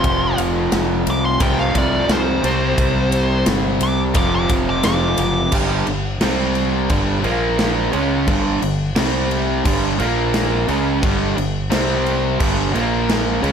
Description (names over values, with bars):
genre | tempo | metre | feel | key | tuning
hard rock | 87 BPM | 4/4 | straight | unclear | A4 = 440 Hz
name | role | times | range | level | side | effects
high-gain lead guitar | melody | 0.0-5.5 s | C5 to D6 | -23 LUFS | left 1 dB | distortion, analog delay
biting overdriven guitar | riff | 0.0-13.5 s | F2 to C#4 | -22 LUFS | left 10 dB | none
overdriven semi-hollow guitar | riff | 0.0-13.5 s | F2 to C#4 | -21 LUFS | right 10 dB | none
growling fingered electric bass | bass | 0.0-13.5 s | F1 to C#2 | -23 LUFS | equal | overdrive
big rock drum kit | drums | 0.0-13.5 s | crash cymbal, kick drum, ride cymbal, snare drum | -22 LUFS | left 1 dB | none
room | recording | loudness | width
light reverb, small room ambience | none | -16 LUFS | side -7 dB against mid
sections
0.0-5.5 A section; 5.5-13.5 B section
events
lead electric guitar solo 0.0-5.5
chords
0.0 F5; 2.4 C5; 4.2 F5; 5.5 G5; 6.2 C5; 6.9 G5; 7.2 Bb5; 7.9 G5; 9.0 C5; 9.7 G5; 10.0 Bb5; 10.7 G5; 11.7 C5; 12.4 G5; 12.7 Bb5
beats
| 0.04 0.73 1.41 2.10 | 2.78 3.47 4.15 4.84 | 5.53 6.21 6.90 7.59 | 8.28 8.97 9.65 10.34 | 11.03 11.72 12.40 13.09